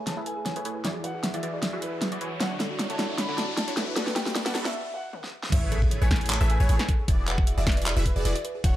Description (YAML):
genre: future bass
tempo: 154 BPM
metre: 4/4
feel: swing 53% on 16ths, half-time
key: A major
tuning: A4 = 443 Hz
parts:
  - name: thumb-piano-like synth pluck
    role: arpeggios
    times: 0.0-8.8 s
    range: F#4 to E5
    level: -39 LUFS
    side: right 2 dB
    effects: chorus, sidechain pumping, digital delay
  - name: supersaw stab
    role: riff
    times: 0.0-8.8 s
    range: D3 to E5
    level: -33 LUFS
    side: equal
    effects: phaser, sidechain pumping, low-pass filter
  - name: riser and impact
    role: sound effects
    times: 1.2-7.1 s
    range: none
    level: -37 LUFS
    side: equal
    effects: none
  - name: dark concert grand piano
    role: melody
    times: 0.1-8.8 s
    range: B4 to B5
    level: -36 LUFS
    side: left 1 dB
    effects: sidechain pumping, digital delay
  - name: pop drum kit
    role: drums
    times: 0.1-8.7 s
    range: crash cymbal, handclaps, hi-hat, snare drum, toms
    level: -29 LUFS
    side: equal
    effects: overdrive
  - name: wide unison pluck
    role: arpeggios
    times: 5.5-8.8 s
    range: C#5 to E5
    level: -40 LUFS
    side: right 1 dB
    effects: phaser, sidechain pumping
  - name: warm 808-style bass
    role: bass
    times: 5.5-8.8 s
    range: D1 to A1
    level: -24 LUFS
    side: equal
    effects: sidechain pumping
  - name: electronic kick drum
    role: drums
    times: 5.5-8.7 s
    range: none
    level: -24 LUFS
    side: equal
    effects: overdrive
room: light reverb, digital ambience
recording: high-pass filter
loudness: -24 LUFS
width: side -14 dB against mid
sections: 0.0-5.5 A section; 5.5-8.8 B section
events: build-up 0.0-5.5; drum fill 0.0-4.7, 5.1-5.5; filter sweep on supersaw synth 0.0-5.5; riser 1.2-4.7; break 4.7-5.5; drop 5.5-8.8; impact 5.5-7.1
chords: 0.0 Amaj9; 0.8 E7; 2.4 Dmaj7; 4.0 Gmaj7; 5.5 Amaj9; 7.1 E7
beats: 0.07 0.46 | 0.85 1.24 1.63 2.02 | 2.41 2.80 3.19 3.58 | 3.96 4.35 4.74 5.13 | 5.52 5.91 6.30 6.69 | 7.08 7.47 7.86 8.25 | 8.64